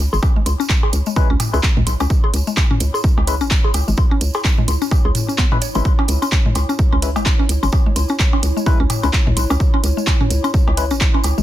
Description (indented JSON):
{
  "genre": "minimal techno",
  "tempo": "128 BPM",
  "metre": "4/4",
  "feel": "swing 58% on 16ths",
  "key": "C# minor",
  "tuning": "A4 = 441 Hz",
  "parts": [
    { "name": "hollow knocking FM bass", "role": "bass", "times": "0.0-11.4 s", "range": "G#1 to C#2", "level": "-18 LUFS", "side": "equal", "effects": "sidechain pumping" },
    { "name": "warbly tape-like pad", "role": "texture", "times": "0.0-11.4 s", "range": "E4 to B5", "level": "-30 LUFS", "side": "right 2 dB", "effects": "chorus, built-in reverb, sidechain pumping" },
    { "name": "mallet-like synth pluck", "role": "riff", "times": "0.1-11.4 s", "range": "G#3 to C#5", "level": "-24 LUFS", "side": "left 1 dB", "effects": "chorus, sidechain pumping, ping-pong delay" },
    { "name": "electronic woodblock, cowbell and toms", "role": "percussion", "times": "0.1-11.4 s", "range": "none", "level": "-24 LUFS", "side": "left 2 dB", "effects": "studio reverb" },
    { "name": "tambourine", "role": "percussion", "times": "0.1-11.4 s", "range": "none", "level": "-30 LUFS", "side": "right 4 dB", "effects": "none" },
    { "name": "electronic kick drum", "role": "drums", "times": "0.2-11.1 s", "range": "none", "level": "-16 LUFS", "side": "equal", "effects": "studio reverb" },
    { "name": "house drum kit", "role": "drums", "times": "0.5-11.4 s", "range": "handclaps, hi-hat", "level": "-22 LUFS", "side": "right 1 dB", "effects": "studio reverb" },
    { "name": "percussive organ stab", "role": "stabs", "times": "1.2-10.8 s", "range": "G#3 to B4", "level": "-28 LUFS", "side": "left 5 dB", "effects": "chorus, ping-pong delay" }
  ],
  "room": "little or no reverb",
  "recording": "dense, heavily limited modern master",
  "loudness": "-14 LUFS",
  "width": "side -13 dB against mid",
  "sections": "0.0-11.4 A section",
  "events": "fade-in on ambient pad 0.0-11.4",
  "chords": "0.0 C#m7",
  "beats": "| 0.23 0.69 1.16 1.63 | 2.10 2.57 3.04 3.51 | 3.98 4.45 4.91 5.38 | 5.85 6.32 6.79 7.26 | 7.73 8.20 8.66 9.13 | 9.60 10.07 10.54 11.01"
}